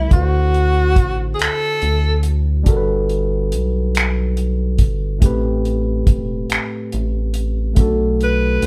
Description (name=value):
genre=slow six-eight R&B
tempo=47 BPM (dotted quarters)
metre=6/8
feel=straight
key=G major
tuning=A4 = 440 Hz
part: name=breathy tenor saxophone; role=melody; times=0.0-2.4, 8.2-8.7 s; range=E4 to B4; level=-22 LUFS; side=equal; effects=none
part: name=overdriven tine electric piano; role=accompaniment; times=0.0-8.7 s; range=A2 to C5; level=-25 LUFS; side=equal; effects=none
part: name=rubbery square bass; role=bass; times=0.0-8.7 s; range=E1 to D2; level=-21 LUFS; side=equal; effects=none
part: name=cloth-damped thuddy drum kit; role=drums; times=0.1-8.7 s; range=finger snaps, hi-hat, kick drum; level=-18 LUFS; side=equal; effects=none
room=light reverb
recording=band playing live in one room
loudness=-18 LUFS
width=mono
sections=0.0-8.7 A section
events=none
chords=0.1 D9; 2.7 Gmaj7; 5.2 Am9; 7.8 Bm7